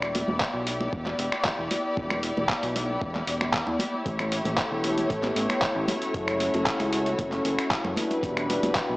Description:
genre	nu-disco, nu disco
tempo	115 BPM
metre	4/4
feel	straight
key	E dorian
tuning	A4 = 436 Hz
part	rich studio string section	sustained chords	0.0-9.0 s	G3 to D5	-30 LUFS	left 1 dB	sidechain pumping
part	fat analog bass	bass	0.0-9.0 s	E1 to E2	-32 LUFS	equal	none
part	dusty soul sampler-style drum kit	drums	0.0-8.9 s	finger snaps, handclaps, hi-hat	-28 LUFS	equal	overdrive
part	congas	percussion	0.2-8.9 s	none	-34 LUFS	equal	analog delay
part	electronic kick drum	drums	0.4-8.9 s	none	-35 LUFS	equal	overdrive
part	warm analog pad	accompaniment	4.4-9.0 s	B3 to C#5	-28 LUFS	equal	chorus, cassette tape, sidechain pumping, analog delay
room	light reverb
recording	echo-heavy mix, small speaker sound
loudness	-24 LUFS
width	side -21 dB against mid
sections	0.0-9.0 A section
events	none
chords	0.0 Em7; 4.1 A7; 5.9 F#m7; 8.0 Em7

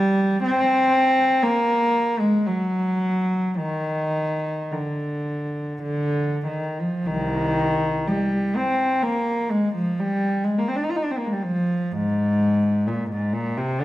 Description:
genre	classical, free, expressive piece for unaccompanied cello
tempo	43-65 BPM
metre	3/4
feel	rubato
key	C minor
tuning	A4 = 440 Hz
part	warm cello	solo	0.0-13.8 s	C2 to F4	-20 LUFS	equal	none
room	wet recital hall reverb, RT60 1.3 s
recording	none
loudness	-20 LUFS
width	side -15 dB against mid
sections	0.0-7.1 A section; 7.1-13.8 B section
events	none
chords	none

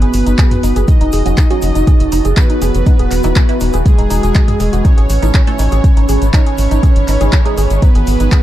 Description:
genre	melodic techno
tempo	121 BPM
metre	4/4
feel	straight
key	G# phrygian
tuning	A4 = 439 Hz
part	expressive synth lead	melody	0.0-8.4 s	G#3 to D#4	-19 LUFS	right 1 dB	lush chorus, sidechain pumping, ping-pong delay
part	soft supersaw	second line	0.0-8.4 s	G#4 to D#5	-27 LUFS	right 1 dB	sidechain pumping, digital delay
part	deep dark ambient pad	sustained chords	0.0-8.4 s	F#4 to D#6	-27 LUFS	right 2 dB	chorus, built-in reverb, sidechain pumping
part	woody wave-folded pluck	arpeggios	0.0-8.4 s	D#4 to D#5	-23 LUFS	right 1 dB	lush chorus, cassette tape, sidechain pumping, digital delay
part	tight sequencer bass	bass	0.0-8.3 s	E1 to A1	-14 LUFS	equal	sidechain pumping
part	swarming drone	drone	0.1-8.4 s	B2 to E3	-30 LUFS	left 1 dB	none
part	deep house drum kit	drums	0.0-8.4 s	handclaps, hi-hat, toms	-23 LUFS	equal	none
part	deep dark ambient pad	texture	0.1-8.4 s	F#4 to B5	-26 LUFS	right 2 dB	chorus, built-in reverb, sidechain pumping
part	tube shaker	percussion	0.1-8.4 s	none	-33 LUFS	left 3 dB	none
part	electronic kick drum	drums	0.4-8.4 s	none	-10 LUFS	equal	none
part	filtered dub chord stab	stabs	1.3-7.6 s	E3 to A4	-24 LUFS	right 4 dB	phaser, sidechain pumping, digital delay
room	digital ambience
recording	dark, warm production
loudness	-9 LUFS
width	side -13 dB against mid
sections	0.0-8.4 A section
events	none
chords	0.0 G#m7; 0.9 F#m7; 2.9 Eadd9; 4.8 Aadd9; 6.8 G#m7

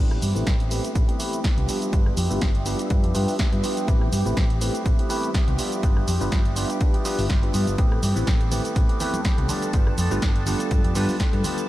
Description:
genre	filtered disco house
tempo	123 BPM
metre	4/4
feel	swing 55% on 16ths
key	unclear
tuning	A4 = 440 Hz
part	bell-like tine electric piano	accompaniment	0.0-11.7 s	G3 to B4	-29 LUFS	equal	phaser, sidechain pumping, low-pass filter
part	string machine, full ensemble	sustained chords	0.0-11.7 s	G4 to A5	-33 LUFS	equal	phaser, ensemble chorus, sidechain pumping, low-pass filter
part	electric guitar with an envelope filter	riff	0.0-11.7 s	E3 to G4	-33 LUFS	right 3 dB	sidechain pumping, low-pass filter
part	hollow-body short-scale fingered electric bass	bass	0.0-11.4 s	G1 to G2	-25 LUFS	equal	sidechain pumping, low-pass filter
part	punchy analog drum machine	drums	0.1-11.7 s	hi-hat, rim click, shaker, snare drum	-31 LUFS	equal	sidechain pumping on hats, small room ambience, sidechain pumping on cymbals, sidechain pumping on perc
part	electronic kick drum	drums	0.5-11.3 s	none	-22 LUFS	equal	small room ambience
part	tambourine and congas	percussion	7.8-11.7 s	none	-35 LUFS	right 1 dB	sidechain pumping on perc, low-pass filter on perc
room	light reverb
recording	none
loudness	-20 LUFS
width	side -15 dB against mid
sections	0.0-11.7 A section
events	filter sweep 0.0-11.7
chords	0.0 Am9; 1.7 G7; 3.9 Am9; 5.6 G7; 7.8 Am9; 9.5 G7

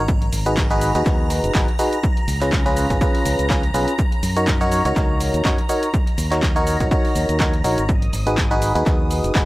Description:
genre	piano house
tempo	123 BPM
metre	4/4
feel	swing 55% on 16ths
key	unclear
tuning	A4 = 439 Hz
part	string machine, violins	sustained chords	0.0-9.5 s	Bb5 to Eb6	-30 LUFS	equal	ensemble chorus, sidechain pumping
part	barking FM electric piano	riff	0.0-9.5 s	Db4 to Db5	-21 LUFS	equal	chorus, vintage 12-bit sampler grit, sidechain pumping, tape echo
part	modern bright fingered electric bass	bass	0.0-9.5 s	Gb1 to Gb2	-23 LUFS	equal	sidechain pumping
part	electronic kick drum	drums	0.1-9.5 s	none	-20 LUFS	equal	overdrive
part	punchy analog drum machine	drums	0.1-9.5 s	cabasa, handclaps, hi-hat	-28 LUFS	equal	overdrive
room	little or no reverb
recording	dry, gritty hardware recording, transformer saturation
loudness	-16 LUFS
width	side -18 dB against mid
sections	0.0-9.5 A section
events	none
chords	0.1 Abm7; 2.0 Db7; 4.0 Gb6; 5.9 Ebm7; 7.9 Abm7

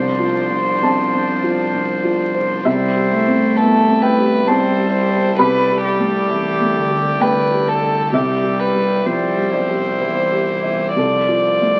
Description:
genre	neoclassical piano and strings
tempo	66 BPM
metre	3/4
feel	rubato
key	C major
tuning	A4 = 440 Hz
part	warm violin	melody	0.0-11.8 s	G4 to D5	-21 LUFS	equal	none
part	warm cello	second line	0.0-11.8 s	D3 to A3	-24 LUFS	equal	none
part	felt-muted upright piano	accompaniment	0.0-11.8 s	C2 to B5	-22 LUFS	equal	none
part	pedal harmonium	sustained chords	0.0-11.8 s	G3 to E5	-28 LUFS	equal	none
part	saturated sub bass	bass	0.0-11.8 s	C2	-30 LUFS	equal	none
room	wet club reverb, RT60 0.9 s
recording	very old 78 rpm record, vinyl crackle, nothing above 7.8 kHz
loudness	-17 LUFS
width	mono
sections	0.0-11.8 A section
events	none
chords	0.0 F6/C; 2.7 C; 5.4 Gadd9/C; 8.1 C; 11.0 F6/C

